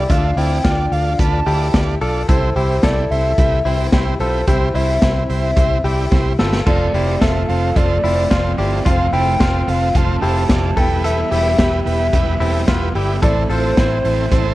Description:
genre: jangly indie pop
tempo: 110 BPM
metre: 4/4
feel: straight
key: unclear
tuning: A4 = 439 Hz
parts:
  - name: hollow clarinet-like synth lead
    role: melody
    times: 0.0-14.5 s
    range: C5 to A5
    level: -21 LUFS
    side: equal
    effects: chorus, slapback echo
  - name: combo organ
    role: accompaniment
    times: 0.0-14.5 s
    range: B3 to F5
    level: -25 LUFS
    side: right 5 dB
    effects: none
  - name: direct-recorded clean electric guitar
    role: arpeggios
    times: 0.0-14.5 s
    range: B3 to A4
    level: -23 LUFS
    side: left 3 dB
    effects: none
  - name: vintage muted fingered electric bass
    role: bass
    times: 0.0-14.5 s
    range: E1 to D2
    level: -19 LUFS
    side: equal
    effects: none
  - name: raw garage drum kit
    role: drums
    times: 0.1-14.4 s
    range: crash cymbal, hi-hat, kick drum, ride cymbal, snare drum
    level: -19 LUFS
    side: equal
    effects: none
  - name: overdriven electric guitar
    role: accompaniment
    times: 6.7-14.5 s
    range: A2 to F4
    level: -26 LUFS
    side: right 8 dB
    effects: spring reverb
room: little or no reverb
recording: none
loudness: -14 LUFS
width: side -17 dB against mid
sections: 0.0-14.5 A section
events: drum fill 6.1-6.7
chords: 0.0 Dm; 2.3 C; 6.7 F; 10.8 Em; 13.2 Am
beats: | 0.09 0.64 1.19 1.74 | 2.29 2.83 3.38 3.93 | 4.48 5.02 5.57 6.12 | 6.67 7.21 7.76 8.31 | 8.86 9.40 9.95 10.50 | 11.04 11.59 12.13 12.68 | 13.23 13.77 14.32

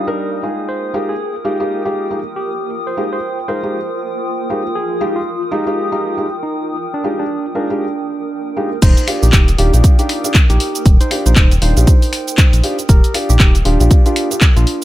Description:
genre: deep house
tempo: 118 BPM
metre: 4/4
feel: swing 59% on 16ths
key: Eb major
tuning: A4 = 437 Hz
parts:
  - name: felt-muted upright piano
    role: stabs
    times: 0.0-14.4 s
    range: G3 to C5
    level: -21 LUFS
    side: equal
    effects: low-pass filter
  - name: granular cloud pad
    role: texture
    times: 0.0-14.8 s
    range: F4 to Eb6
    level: -25 LUFS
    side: equal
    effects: built-in reverb, sidechain pumping
  - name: overdriven tine electric piano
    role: melody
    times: 0.7-14.8 s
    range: D4 to C5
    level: -23 LUFS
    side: right 2 dB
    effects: vintage 12-bit sampler grit
  - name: round analog bass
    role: bass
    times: 8.8-14.7 s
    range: Eb1 to Bb1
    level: -12 LUFS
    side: equal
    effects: tube saturation, sidechain pumping
  - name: electronic kick drum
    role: drums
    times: 8.8-14.5 s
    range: none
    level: -10 LUFS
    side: equal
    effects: none
  - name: punchy analog drum machine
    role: drums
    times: 8.8-14.8 s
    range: crash cymbal, finger snaps, handclaps, hi-hat, shaker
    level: -19 LUFS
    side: equal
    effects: none
room: digital ambience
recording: none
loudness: -13 LUFS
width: side -15 dB against mid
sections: 0.0-8.8 A section; 8.8-14.8 B section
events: drop 8.8-14.8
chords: 0.4 Fm9; 8.8 Ebmaj9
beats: 0.18 | 0.69 1.20 1.70 2.21 | 2.72 3.23 3.74 4.25 | 4.75 5.26 5.77 6.28 | 6.79 7.30 7.80 8.31 | 8.82 9.33 9.84 10.35 | 10.86 11.36 11.87 12.38 | 12.89 13.40 13.91 14.41

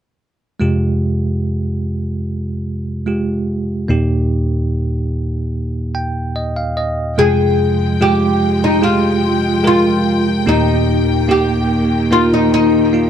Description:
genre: pop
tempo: 73 BPM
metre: 4/4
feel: straight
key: F minor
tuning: A4 = 440 Hz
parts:
  - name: bell-like tine electric piano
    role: accompaniment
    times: 0.6-13.1 s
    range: Eb2 to G5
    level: -16 LUFS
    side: right 1 dB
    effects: fast stereo tremolo
  - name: oud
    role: melody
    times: 7.2-13.1 s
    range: Eb4 to Ab4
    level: -16 LUFS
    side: left 2 dB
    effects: none
  - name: rich studio string section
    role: sustained chords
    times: 7.2-13.1 s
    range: Eb3 to G5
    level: -22 LUFS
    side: left 2 dB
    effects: none
room: light reverb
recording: dry, close 1970s-style studio recording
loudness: -14 LUFS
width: side -9 dB against mid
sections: 0.6-7.2 A section; 7.2-13.1 B section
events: tine electric piano fill 5.5-7.2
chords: 0.6 Fmadd9; 3.9 Eb; 7.2 Fmadd9; 10.5 Eb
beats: | 0.60 1.42 2.24 3.07 | 3.89 4.71 5.53 6.35 | 7.17 8.00 8.82 9.64 | 10.46 11.29 12.11 12.93

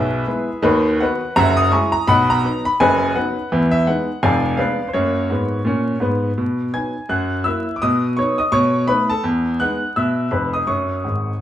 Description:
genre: jazz, stride piano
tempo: 168 BPM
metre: 4/4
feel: swing 60% on 8ths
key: B major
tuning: A4 = 440 Hz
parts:
  - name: clear baby grand piano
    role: solo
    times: 0.0-11.4 s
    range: F1 to G#6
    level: -16 LUFS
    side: equal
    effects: none
room: wet large studio reverb, RT60 0.9 s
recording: band playing live in one room, vinyl crackle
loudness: -16 LUFS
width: side -11 dB against mid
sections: 0.0-6.4 A section; 6.4-11.4 B section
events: grand piano fill 11.0-11.4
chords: 0.0 E; 0.6 B/D#; 1.4 F#9; 2.1 B; 3.5 Emaj7; 4.2 Fdim7; 4.9 F#; 6.4 B; 7.1 F#7; 7.8 B; 8.5 B7; 9.2 Emaj7; 10.7 F#5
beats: 0.29 | 0.65 1.00 1.36 1.72 | 2.08 2.44 2.79 3.15 | 3.51 3.87 4.22 4.58 | 4.94 5.30 5.66 6.02 | 6.37 6.73 7.09 7.45 | 7.81 8.17 8.53 8.88 | 9.24 9.60 9.96 10.32 | 10.68 11.04 11.40

